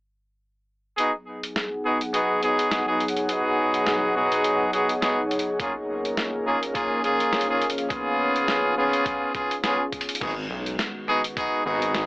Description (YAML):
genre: glitch hop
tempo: 104 BPM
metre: 4/4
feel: swing 56% on 16ths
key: G# dorian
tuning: A4 = 442 Hz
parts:
  - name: warbly tape-like pad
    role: sustained chords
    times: 1.3-12.1 s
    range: D#3 to G#4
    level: -33 LUFS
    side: equal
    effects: chorus, built-in reverb, sidechain pumping
  - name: brilliant horn section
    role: stabs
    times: 1.0-12.1 s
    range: A#3 to G#4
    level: -23 LUFS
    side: equal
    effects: sidechain pumping, low-pass filter, analog delay
  - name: boom bap sampler-style drum kit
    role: drums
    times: 1.0-12.1 s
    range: crash cymbal, hi-hat, rim click, snare drum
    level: -29 LUFS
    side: equal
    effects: none
  - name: airy breathy pad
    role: texture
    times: 1.0-10.2 s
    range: B2 to F#5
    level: -29 LUFS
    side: equal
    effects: chorus, sidechain pumping
  - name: electronic kick drum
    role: drums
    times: 5.6-11.5 s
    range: none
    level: -34 LUFS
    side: equal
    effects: none
  - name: gritty driven synth bass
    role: bass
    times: 10.2-12.1 s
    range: G#1 to B1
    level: -31 LUFS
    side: equal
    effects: tube saturation
room: moderate small room reverb, RT60 0.5 s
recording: dry, gritty hardware recording, AM radio sound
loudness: -22 LUFS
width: side -25 dB against mid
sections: 1.0-10.2 A section; 10.2-12.1 B section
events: drum fill 9.9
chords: 1.0 G#m7; 5.6 A#m7; 7.9 C#7; 10.2 G#m7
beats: | 0.98 1.56 2.14 2.71 | 3.29 3.87 4.45 5.02 | 5.60 6.18 6.75 7.33 | 7.91 8.48 9.06 9.64 | 10.21 10.79 11.37 11.95